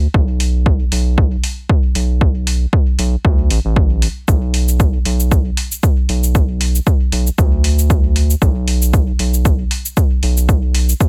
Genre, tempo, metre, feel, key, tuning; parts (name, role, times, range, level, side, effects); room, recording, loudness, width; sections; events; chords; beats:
dub techno; 116 BPM; 4/4; swing 56% on 16ths; B minor; A4 = 440 Hz
round analog bass; bass; 0.0-10.9 s; A1 to D2; -18 LUFS; equal; sidechain pumping
electronic kick drum; drums; 0.1-11.1 s; -17 LUFS; equal; overdrive
electronic hi-hat and shaker; drums; 0.4-11.1 s; -25 LUFS; equal
digital ambience; -15 LUFS; mono
0.0-11.1 A section
| 0.14 0.66 1.18 1.70 | 2.21 2.73 3.25 3.76 | 4.28 4.80 5.32 5.83 | 6.35 6.87 7.38 7.90 | 8.42 8.94 9.45 9.97 | 10.49 11.01